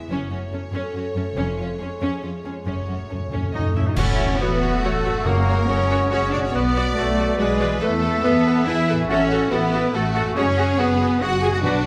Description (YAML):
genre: cinematic, heroic adventure film score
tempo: 141 BPM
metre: 3/4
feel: straight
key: F# dorian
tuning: A4 = 440 Hz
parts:
  - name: rich symphonic violin section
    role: melody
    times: 0.0-11.9 s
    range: E4 to D5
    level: -33 LUFS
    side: equal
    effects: none
  - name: concert harp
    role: arpeggios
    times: 0.0-11.9 s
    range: E2 to D5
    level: -34 LUFS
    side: equal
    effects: none
  - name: warm symphonic violin section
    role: second line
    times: 0.1-11.9 s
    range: C#4 to G#5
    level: -36 LUFS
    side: equal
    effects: none
  - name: clear studio viola section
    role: accompaniment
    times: 0.1-11.7 s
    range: C#4 to D5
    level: -32 LUFS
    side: equal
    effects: none
  - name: rich symphonic double bass section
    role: bass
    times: 0.1-11.9 s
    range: E#1 to E2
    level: -28 LUFS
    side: equal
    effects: none
  - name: warm symphonic cello section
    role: bass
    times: 0.1-11.9 s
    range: E#2 to G#4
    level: -30 LUFS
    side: equal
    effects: none
  - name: timpani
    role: percussion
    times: 2.7-5.9, 11.6-11.9 s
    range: F#2 to B2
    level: -29 LUFS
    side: equal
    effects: none
  - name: warm cor anglais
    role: second line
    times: 3.5-11.9 s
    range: G#3 to G#4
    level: -32 LUFS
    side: equal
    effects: none
  - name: mellow French horn section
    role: sustained chords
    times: 3.5-11.9 s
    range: G#3 to G#4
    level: -26 LUFS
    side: equal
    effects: none
  - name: mellow hollow silver concert flute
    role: second line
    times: 4.0-11.7 s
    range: D5 to F#5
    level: -35 LUFS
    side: equal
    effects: none
  - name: warm clarinet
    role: second line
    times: 4.0-11.7 s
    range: G#4 to B4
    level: -34 LUFS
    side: equal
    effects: none
  - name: warm trombone section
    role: sustained chords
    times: 4.0-11.8 s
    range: E3 to B3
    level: -35 LUFS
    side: equal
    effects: none
  - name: mellow trumpet section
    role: stabs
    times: 4.0-11.8 s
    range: B4 to E5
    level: -30 LUFS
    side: equal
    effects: none
  - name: clash cymbals and concert bass drum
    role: percussion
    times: 4.0-4.8 s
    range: none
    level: -30 LUFS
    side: equal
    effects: none
room: moderate recital hall reverb, RT60 1.3 s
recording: none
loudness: -21 LUFS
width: mono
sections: 0.0-4.0 A section; 4.0-11.9 B section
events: timpani fill 2.7-4.0; band accent 4.0-4.4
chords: 0.1 F#m; 1.4 C#/E#; 2.7 F#m; 4.0 A6; 5.3 F#add9; 6.5 Bm; 7.8 Esus4; 9.1 A6; 10.4 F#sus2